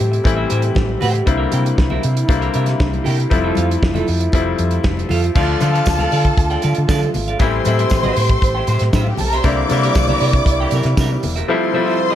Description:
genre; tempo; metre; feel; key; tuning
disco; 118 BPM; 4/4; straight; D minor; A4 = 436 Hz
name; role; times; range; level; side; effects
bright concert grand piano; accompaniment; 0.0-12.2 s; D3 to F4; -22 LUFS; left 6 dB; none
semi-hollow electric guitar; accompaniment; 0.0-12.2 s; F4 to G5; -24 LUFS; right 5 dB; none
mellow French horn section; sustained chords; 0.0-12.2 s; C3 to G4; -25 LUFS; right 1 dB; none
hollow-body short-scale fingered electric bass; bass; 0.0-11.4 s; E1 to D3; -19 LUFS; equal; none
damped 70s drum kit; drums; 0.1-11.5 s; crash cymbal, hi-hat, kick drum, snare drum; -19 LUFS; equal; gated reverb
congas; percussion; 0.2-11.4 s; none; -29 LUFS; left 4 dB; none
warm studio string section; second line; 5.4-12.2 s; E4 to D6; -22 LUFS; equal; none
tambourine; percussion; 5.4-11.3 s; none; -37 LUFS; right 5 dB; none
room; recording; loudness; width
light reverb, studio ambience; none; -14 LUFS; side -11 dB against mid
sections
0.0-5.4 A section; 5.4-12.2 B section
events
none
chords
0.0 Am7; 1.3 C7; 3.3 Fmaj7; 5.4 Dm; 7.4 Am7; 9.4 C7; 11.5 Fmaj7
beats
0.25 0.76 | 1.27 1.78 2.29 2.80 | 3.31 3.82 4.33 4.84 | 5.35 5.86 6.38 6.89 | 7.40 7.91 8.42 8.93 | 9.44 9.95 10.46 10.97 | 11.48 11.99

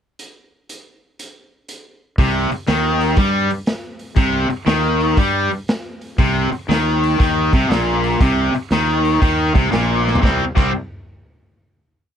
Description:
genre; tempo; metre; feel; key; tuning
blues rock power trio and southern rock; 119 BPM; 4/4; swing 66% on 8ths; unclear; A4 = 440 Hz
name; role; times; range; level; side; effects
raw garage drum kit; drums; 0.2-10.7 s; crash cymbal, hi-hat, kick drum, snare drum, toms; -20 LUFS; equal; none
overdriven electric guitar; riff; 2.2-10.7 s; Bb2 to C4; -17 LUFS; left 1 dB; none
fuzz fingered electric bass; bass; 2.2-10.7 s; Bb1 to G2; -22 LUFS; equal; overdrive
room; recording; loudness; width
little or no reverb; dry, close 1970s-style studio recording; -15 LUFS; side -9 dB against mid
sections
0.2-2.2 pickup bar; 2.2-10.2 riff; 10.2-12.2 final chord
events
drum fill 10.0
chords
0.2 N.C.; 2.2 C5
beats
| 0.18 0.68 1.18 1.68 | 2.18 2.67 3.17 3.67 | 4.17 4.67 5.17 5.68 | 6.18 6.68 7.19 7.69 | 8.20 8.71 9.21 9.72 | 10.23

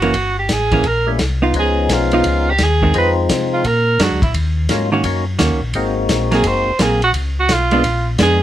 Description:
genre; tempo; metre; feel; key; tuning
soul jazz organ trio; 172 BPM; 4/4; swing 65% on 8ths; unclear; A4 = 440 Hz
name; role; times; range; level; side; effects
breathy tenor saxophone; melody; 0.0-8.4 s; Fb4 to C5; -17 LUFS; right 2 dB; none
hollow-body jazz guitar; accompaniment; 0.0-8.4 s; Eb3 to Gb4; -18 LUFS; right 3 dB; none
mellow tonewheel organ; bass; 0.0-8.4 s; Gb1 to C3; -19 LUFS; left 1 dB; chorus vibrato, slow rotary speaker
warm soul drum kit; drums; 0.0-8.3 s; hi-hat, kick drum, ride cymbal, snare drum; -22 LUFS; left 1 dB; none
percussive tonewheel organ; melody; 1.1-7.8 s; F3 to Gb4; -19 LUFS; left 4 dB; slow rotary speaker, overdrive
room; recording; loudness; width
light reverb; minimal, uncompressed stereo recording; -14 LUFS; side -12 dB against mid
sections
0.0-8.4 A section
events
tenor saxophone solo 0.0-8.4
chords
0.2 Gm; 1.5 Db9; 2.9 Fm7; 3.6 Bbaug7; 4.3 Ebm7; 5.7 Ab9; 7.1 Db7; 7.8 Bb7b9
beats
| 0.15 0.50 0.85 1.20 | 1.55 1.90 2.25 2.60 | 2.95 3.29 3.65 3.99 | 4.34 4.69 5.04 5.39 | 5.74 6.09 6.44 6.79 | 7.14 7.49 7.84 8.19

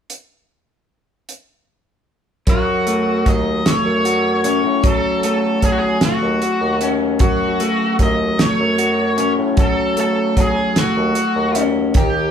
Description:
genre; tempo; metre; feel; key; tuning
psychedelic rock; 51 BPM (dotted quarters); 6/8; straight; F# dorian; A4 = 443 Hz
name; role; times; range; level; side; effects
damped 70s drum kit; drums; 0.1-12.1 s; hi-hat, kick drum, snare drum; -18 LUFS; right 1 dB; none
octave-fuzz lead guitar; melody; 2.5-12.3 s; F#4 to D#5; -20 LUFS; left 1 dB; wah, distortion
electric guitar through a small old amp; riff; 2.5-12.3 s; D#3 to F#4; -19 LUFS; left 1 dB; none
warm bassoon; bass; 2.5-12.3 s; D#2 to F#3; -22 LUFS; equal; none
room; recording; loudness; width
moderate large studio reverb, RT60 1.0 s; band playing live in one room; -14 LUFS; side -8 dB against mid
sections
0.1-2.5 A section; 2.5-12.3 B section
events
none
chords
0.1 N.C.; 2.5 F#m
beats
| 0.10 1.28 | 2.47 3.65 | 4.84 6.02 | 7.21 8.39 | 9.58 10.77 | 11.96

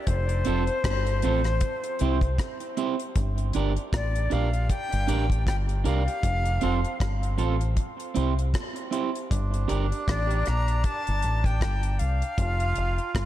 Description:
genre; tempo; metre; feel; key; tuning
dub reggae; 78 BPM; 4/4; swing 58% on 16ths; G dorian; A4 = 440 Hz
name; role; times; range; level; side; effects
breathy bright jazz flute; melody; 0.0-13.3 s; C5 to Bb5; -32 LUFS; left 3 dB; dub echo
deep dub fingered electric bass; bass; 0.1-13.3 s; F1 to C2; -25 LUFS; equal; none
deep reggae drum kit; drums; 0.1-13.3 s; hi-hat, kick drum, rim click; -29 LUFS; equal; none
electric guitar at the edge of break-up; accompaniment; 0.5-9.9 s; C4 to D5; -31 LUFS; right 7 dB; spring reverb, dub echo
growling tenor saxophone; second line; 9.3-13.3 s; D4 to F4; -34 LUFS; right 4 dB; dub echo
room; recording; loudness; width
light reverb, studio reverb; echo-heavy mix; -23 LUFS; side -13 dB against mid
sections
0.0-13.3 A section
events
break 0.0-9.3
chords
0.1 F; 1.6 C; 3.2 Gm; 6.2 F; 7.8 C; 9.3 Gm; 12.4 N.C.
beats
| 0.07 0.84 1.61 2.38 | 3.15 3.92 4.69 5.46 | 6.23 7.00 7.76 8.53 | 9.30 10.07 10.84 11.61 | 12.37 13.14

